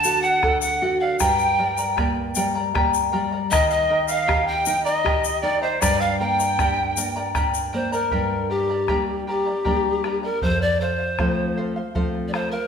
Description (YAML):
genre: andean folk, Andean ensemble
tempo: 78 BPM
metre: 3/4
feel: straight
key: G minor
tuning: A4 = 441 Hz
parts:
  - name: breathy bright pan flute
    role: melody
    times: 0.0-12.7 s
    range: G4 to A5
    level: -22 LUFS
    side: equal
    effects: none
  - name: bright reedy quena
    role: second line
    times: 0.0-7.3 s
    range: C5 to A5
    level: -28 LUFS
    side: right 5 dB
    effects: none
  - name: charango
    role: accompaniment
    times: 0.0-12.7 s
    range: G4 to Bb5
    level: -26 LUFS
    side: left 2 dB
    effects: none
  - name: nylon-string guitar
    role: accompaniment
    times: 0.0-12.6 s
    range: F2 to A4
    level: -27 LUFS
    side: left 1 dB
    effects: none
  - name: tube shaker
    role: percussion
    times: 0.0-8.0 s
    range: none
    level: -30 LUFS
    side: left 7 dB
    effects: none
  - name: bombo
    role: percussion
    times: 0.2-12.6 s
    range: none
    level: -27 LUFS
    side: right 1 dB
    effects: none
room: wet recital hall reverb, RT60 1.3 s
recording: minimal, uncompressed stereo recording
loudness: -19 LUFS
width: side -7 dB against mid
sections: 0.0-8.1 A section; 8.1-12.7 B section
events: none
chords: 0.0 D; 1.2 Gm; 3.5 Eb; 5.8 Gm; 10.4 F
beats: 0.42 | 1.20 1.97 2.74 | 3.51 4.28 5.05 | 5.82 6.59 7.35 | 8.12 8.89 9.65 | 10.42 11.18 11.95